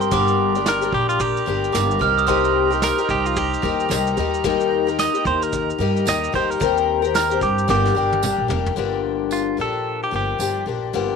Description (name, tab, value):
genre	acoustic pop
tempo	111 BPM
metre	4/4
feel	swing 60% on 16ths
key	G minor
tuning	A4 = 440 Hz
part	glockenspiel with hard plastic mallets	second line	0.0-2.7 s	C6 to F6	-24 LUFS	right 12 dB	none
part	picked twelve-string acoustic guitar	accompaniment	0.0-11.2 s	G2 to Bb4	-21 LUFS	left 10 dB	none
part	mellow woodwind section	sustained chords	0.0-8.8 s	G4 to Bb5	-30 LUFS	right 4 dB	none
part	upright bass	bass	0.0-11.2 s	F1 to G2	-26 LUFS	right 2 dB	none
part	vintage brush drum kit	drums	0.0-8.8 s	kick drum, shaker, snare drum, toms	-29 LUFS	right 2 dB	none
part	direct-recorded clean electric guitar	melody	0.7-10.6 s	F4 to Eb5	-23 LUFS	right 3 dB	phaser
part	tambourine	percussion	0.7-10.5 s	none	-31 LUFS	right 15 dB	none
room	moderate spring reverb, RT60 1.5 s, small room reverb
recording	1960s-style stereo with parts hard left and right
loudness	-18 LUFS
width	side -5 dB against mid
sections	0.0-8.8 A section; 8.8-11.2 B section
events	drum fill 7.7-8.8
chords	0.1 Gm; 2.0 Cm7; 4.2 Eb; 6.6 Cm7/Eb; 7.7 Gm; 8.8 Gm7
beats	| 0.12 0.66 1.20 1.74 | 2.28 2.82 3.36 3.90 | 4.44 4.98 5.52 6.06 | 6.60 7.14 7.68 8.22 | 8.77 9.31 9.85 10.39 | 10.94